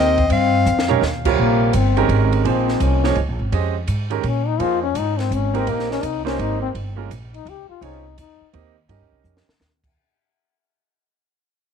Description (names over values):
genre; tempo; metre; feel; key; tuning
modal jazz; 168 BPM; 3/4; swing 64% on 8ths; Bb dorian; A4 = 440 Hz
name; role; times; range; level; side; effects
bright soprano saxophone; melody; 0.0-1.0 s; Eb5 to F5; -21 LUFS; equal; tape echo
clear trombone; second line; 0.0-8.5 s; Bb3 to G4; -23 LUFS; left 11 dB; none
clear baby grand piano; accompaniment; 0.0-9.4 s; C3 to Eb5; -22 LUFS; right 15 dB; none
upright bass; bass; 0.0-9.9 s; G1 to Bb2; -21 LUFS; right 1 dB; none
compact cocktail drum kit; drums; 0.2-9.9 s; crash cymbal, hi-hat, kick drum, ride cymbal, snare drum, toms; -29 LUFS; equal; none
room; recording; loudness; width
light reverb, small room reverb; 1960s-style stereo with parts hard left and right; -17 LUFS; side -7 dB against mid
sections
0.0-1.4 A section; 1.4-10.0 B section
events
drum fill 0.7-1.0, 9.2-9.6; fade-out 1.4-10.0; trombone solo 1.4-10.0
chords
0.0 Cm7; 1.4 Bbm9; 5.7 Cm7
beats
| 0.31 0.67 1.02 | 1.38 1.74 2.10 | 2.46 2.81 3.17 | 3.53 3.88 4.24 | 4.60 4.96 5.32 | 5.67 6.03 6.39 | 6.74 7.10 7.46 | 7.82 8.17 8.53 | 8.89 9.25 9.60